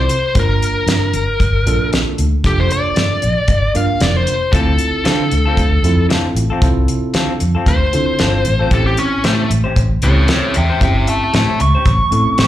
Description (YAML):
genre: straight-eighth soul blues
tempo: 115 BPM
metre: 4/4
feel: swing 55% on 16ths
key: D minor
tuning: A4 = 439 Hz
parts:
  - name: biting lead guitar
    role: melody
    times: 0.0-12.5 s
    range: A3 to C#6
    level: -18 LUFS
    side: left 1 dB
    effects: overdrive, slapback echo
  - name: tine electric piano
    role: accompaniment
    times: 0.0-12.5 s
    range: Bb3 to Bb4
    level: -23 LUFS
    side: right 4 dB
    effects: medium stereo tremolo, slapback echo
  - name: vintage muted fingered electric bass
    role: bass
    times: 0.0-12.5 s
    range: F1 to D3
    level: -16 LUFS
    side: equal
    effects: none
  - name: damped 70s drum kit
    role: drums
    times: 0.1-12.5 s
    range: hi-hat, kick drum, snare drum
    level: -17 LUFS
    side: equal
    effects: none
  - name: electric guitar through a small old amp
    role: stabs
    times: 4.5-12.5 s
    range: D3 to B#4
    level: -23 LUFS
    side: left 5 dB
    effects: slapback echo
room: light reverb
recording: live gig heard through the venue's PA, club reverb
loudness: -12 LUFS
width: side -13 dB against mid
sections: 0.0-12.5 A section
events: lead electric guitar solo 0.0-12.5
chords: 0.3 Gm7; 4.5 Dm7; 8.7 A7#9